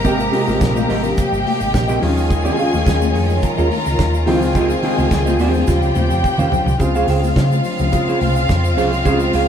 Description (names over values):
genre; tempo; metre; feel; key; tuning
disco; 107 BPM; 4/4; straight; unclear; A4 = 440 Hz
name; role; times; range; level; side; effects
rich studio string section; second line; 0.0-9.5 s; F4 to Bb5; -22 LUFS; left 2 dB; none
semi-hollow electric guitar; accompaniment; 0.0-9.5 s; C4 to G5; -22 LUFS; right 3 dB; spring reverb
warm concert grand piano; accompaniment; 0.0-9.5 s; C3 to G4; -22 LUFS; equal; none
rich studio string section; sustained chords; 0.0-9.5 s; C3 to G4; -24 LUFS; equal; none
hollow-body short-scale fingered electric bass; bass; 0.0-9.5 s; G1 to Eb3; -19 LUFS; equal; none
damped 70s drum kit; drums; 0.0-9.5 s; hi-hat, kick drum, snare drum, toms; -22 LUFS; right 1 dB; none
tube shaker; percussion; 0.0-9.5 s; none; -40 LUFS; right 8 dB; none
congas; percussion; 0.2-9.3 s; none; -27 LUFS; left 9 dB; none
room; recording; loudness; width
moderate stone room reverb, RT60 1.3 s; band playing live in one room; -14 LUFS; side -8 dB against mid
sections
0.0-6.8 A section; 6.8-9.5 B section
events
drum fill 5.7-6.8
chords
0.0 Abmaj9; 2.0 Eb9sus4; 4.3 Dbmaj9#11; 5.7 Eb13; 6.8 Dbmaj7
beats
| 0.05 0.61 1.17 1.74 | 2.30 2.86 3.42 3.99 | 4.55 5.11 5.67 6.24 | 6.80 7.36 7.93 8.49 | 9.05